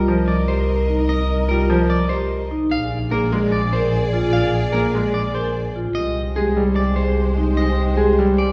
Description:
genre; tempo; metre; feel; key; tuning
classical, minimalist pattern music; 148 BPM; 4/4; straight; unclear; A4 = 440 Hz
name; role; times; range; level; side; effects
electric guitar at the edge of break-up; melody; 0.0-8.5 s; Ab4 to F5; -28 LUFS; equal; none
warm French horn; second line; 0.0-8.5 s; G4 to Bb4; -30 LUFS; equal; none
bright concert grand piano; accompaniment; 0.0-8.5 s; F3 to Bb3; -24 LUFS; equal; none
rich symphonic violin section; sustained chords; 0.0-8.5 s; Ab3 to Eb5; -32 LUFS; equal; none
vibraphone with medium hard mallets; arpeggios; 0.0-8.2 s; Eb4 to Bb4; -27 LUFS; equal; none
rich double bass; bass; 0.0-8.5 s; Bb1 to C2; -23 LUFS; equal; none
room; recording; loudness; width
wet recital hall reverb, RT60 1.6 s; heard from further back in the room; -19 LUFS; mono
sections
0.0-8.5 A section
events
none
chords
0.0 Cm7; 2.7 Bb7; 6.0 Abmaj7/C

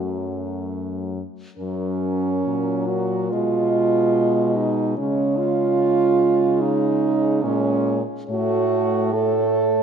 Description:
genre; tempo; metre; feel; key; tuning
classical, lyrical piece for horn quartet; 64-74 BPM; 4/4; rubato; unclear; A4 = 442 Hz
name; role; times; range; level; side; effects
dark French horn; melody; 0.0-9.8 s; F#4 to D#5; -28 LUFS; left 7 dB; none
warm French horn; second line; 0.0-9.8 s; A3 to A4; -21 LUFS; right 6 dB; none
mellow French horn; accompaniment; 0.0-9.8 s; F#3 to A3; -26 LUFS; left 6 dB; none
warm French horn; bass; 0.0-9.8 s; F#2 to C#3; -27 LUFS; equal; none
room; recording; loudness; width
moderate scoring stage reverb, RT60 1.9 s; none; -18 LUFS; side -7 dB against mid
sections
0.0-1.6 A section; 1.6-9.8 B section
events
none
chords
0.0 F#m; 1.6 F#; 3.3 G#m/B; 5.0 C#; 8.3 F#m/A

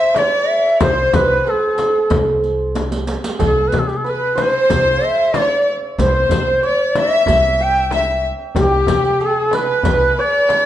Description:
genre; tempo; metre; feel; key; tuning
Persian modal ensemble; 93 BPM; 4/4; straight; C dastgah chahargah; A4 = 441 Hz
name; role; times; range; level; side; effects
breathy bright ney; melody; 0.0-10.7 s; G4 to G5; -16 LUFS; equal; none
rich studio violin section; second line; 0.0-10.7 s; G4 to E5; -23 LUFS; equal; none
santur; second line; 0.0-10.7 s; G4 to G5; -21 LUFS; right 2 dB; none
tombak; percussion; 0.1-10.6 s; none; -25 LUFS; right 2 dB; none
frame drum; percussion; 0.2-10.7 s; none; -23 LUFS; left 4 dB; none
riq; percussion; 0.2-10.7 s; none; -28 LUFS; right 2 dB; none
upright bass; bass; 0.8-10.1 s; C2 to C3; -22 LUFS; equal; none
room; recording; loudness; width
moderate recital hall reverb, RT60 1.4 s; nothing above 11.0 kHz; -14 LUFS; side -12 dB against mid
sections
0.0-10.7 A section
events
drum fill 2.8-3.4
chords
none

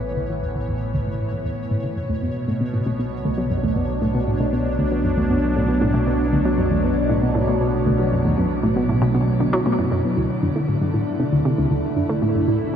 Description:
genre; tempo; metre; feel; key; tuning
ambient, sequencer-driven space music; 117 BPM; 4/4; straight; B minor; A4 = 440 Hz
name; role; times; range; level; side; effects
phased analog pad; sustained chords; 0.0-12.8 s; A2 to E5; -23 LUFS; equal; phaser, chorus, shimmer reverb
analog pluck; riff; 0.0-12.8 s; C#2 to A3; -23 LUFS; equal; chorus, cassette tape, analog delay, shimmer reverb
round analog bass; bass; 0.0-12.8 s; A1 to D2; -29 LUFS; equal; none
pulsing gated texture; texture; 0.0-10.2 s; C#5; -34 LUFS; left 2 dB; chorus, built-in reverb, shimmer reverb
soft round pluck; arpeggios; 2.1-12.8 s; A3 to F#4; -25 LUFS; right 1 dB; chorus, auto-pan, analog delay, shimmer reverb
room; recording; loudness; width
wet cathedral reverb, RT60 6.4 s; in a vast, echoing space, faint mains hum; -18 LUFS; side -8 dB against mid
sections
0.0-10.2 A section; 10.2-12.8 B section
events
fade-in on analog synth pad 0.0-10.2; fade-in on synth texture 0.0-10.2; filter sweep on synth arpeggio sound 0.0-10.2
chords
0.0 Asus2; 2.0 Bmadd9; 10.2 Dsus2

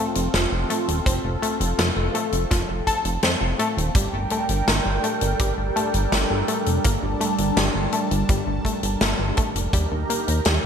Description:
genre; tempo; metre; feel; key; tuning
synthwave; 83 BPM; 4/4; straight; G minor; A4 = 440 Hz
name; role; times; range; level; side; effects
phased analog pad; sustained chords; 0.0-10.7 s; Eb3 to Bb5; -26 LUFS; right 1 dB; phaser, chorus, sidechain pumping
analog pluck; arpeggios; 0.0-10.7 s; F3 to A4; -27 LUFS; left 2 dB; chorus, digital delay
chorused synth bass; bass; 0.2-10.6 s; Eb1 to F2; -24 LUFS; equal; sidechain pumping
big rock drum kit; drums; 0.2-10.6 s; hi-hat, snare drum; -26 LUFS; left 2 dB; gated reverb
kick drum; drums; 1.1-9.9 s; none; -26 LUFS; right 1 dB; none
room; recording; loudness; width
moderate plate reverb, RT60 2.0 s; bright 1980s-style digital production; -20 LUFS; side -7 dB against mid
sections
0.0-10.7 A section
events
kick drops out 3.2-4.0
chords
0.0 F; 4.0 Gmadd9; 9.7 Eb

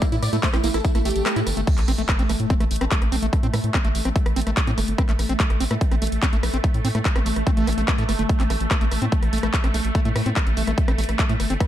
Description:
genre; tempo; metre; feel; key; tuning
psychedelic trance; 145 BPM; 4/4; straight; A minor; A4 = 440 Hz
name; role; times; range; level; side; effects
supersaw stab; melody; 0.0-1.6 s; E4 to D5; -27 LUFS; right 2 dB; phaser, sidechain pumping, ping-pong delay
swarming drone; sustained chords; 0.0-11.7 s; A3; -29 LUFS; equal; built-in reverb, sidechain pumping
screaming distorted acid line; riff; 0.0-11.6 s; A3 to E4; -28 LUFS; equal; distortion, chorus, auto-pan, sidechain pumping, tape echo
big-room dance drum kit; drums; 0.0-11.7 s; crash cymbal, handclaps, hi-hat, rim click; -28 LUFS; equal; overdrive, small room reverb
electronic kick drum; drums; 0.0-11.7 s; none; -21 LUFS; equal; overdrive, small room reverb
tambourine; percussion; 0.0-1.7 s; none; -37 LUFS; right 5 dB; none
round analog bass; bass; 0.1-11.6 s; G1 to A2; -24 LUFS; equal; none
swell and sub drop; sound effects; 1.0-3.3 s; none; -31 LUFS; equal; none
room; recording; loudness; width
digital ambience; dark, warm production; -19 LUFS; side -12 dB against mid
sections
0.0-1.7 A section; 1.7-11.7 B section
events
swell 1.0-1.7; kick drops out 1.3-1.7; drop 1.7-11.7; impact 1.7-3.3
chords
0.0 A5

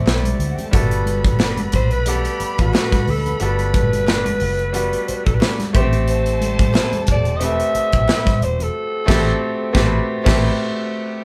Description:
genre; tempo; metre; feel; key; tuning
lush 1970s-style soul; 90 BPM; 4/4; swing 54% on 16ths; A dorian; A4 = 435 Hz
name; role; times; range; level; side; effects
warm studio string section; second line; 0.0-10.5 s; C4 to B5; -33 LUFS; equal; none
clear baby grand piano; accompaniment; 0.0-11.2 s; G3 to F#5; -26 LUFS; equal; none
mellow French horn section; sustained chords; 0.0-11.2 s; B2 to A4; -40 LUFS; equal; none
electric guitar through a small old amp; riff; 0.1-10.5 s; G3 to B4; -32 LUFS; equal; none
vintage muted fingered electric bass; bass; 0.1-10.5 s; E1 to D2; -24 LUFS; equal; none
modern studio drum kit; drums; 0.1-10.5 s; crash cymbal, hi-hat, kick drum, snare drum; -21 LUFS; equal; none
group handclap; percussion; 0.1-8.3 s; none; -40 LUFS; equal; none
congas; percussion; 0.2-8.7 s; none; -31 LUFS; equal; none
growling alto saxophone; melody; 1.8-9.9 s; F#4 to E5; -25 LUFS; equal; none
room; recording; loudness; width
moderate studio reverb, RT60 0.5 s; band playing live in one room; -18 LUFS; mono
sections
0.0-11.2 A section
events
band accent 8.8-11.2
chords
0.0 Am9; 0.7 Gmaj9; 5.7 Am9

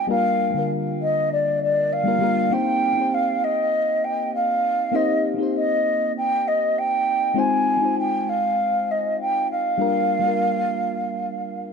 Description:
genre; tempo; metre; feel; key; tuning
chillout; 99 BPM; 4/4; straight; C minor; A4 = 442 Hz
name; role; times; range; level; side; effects
mellow hollow silver concert flute; melody; 0.0-11.7 s; D5 to Ab5; -21 LUFS; right 1 dB; vintage 12-bit sampler grit, ping-pong delay
mellow FM electric piano; accompaniment; 0.0-11.7 s; D3 to C5; -25 LUFS; moving between left 8 dB and right 3 dB; chorus, phaser, auto-pan, digital delay
room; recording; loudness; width
light reverb, studio reverb; none; -19 LUFS; side -6 dB against mid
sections
0.0-11.7 A section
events
none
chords
0.1 Gm7; 2.5 Cm7; 7.4 Fm7; 9.8 Gm7

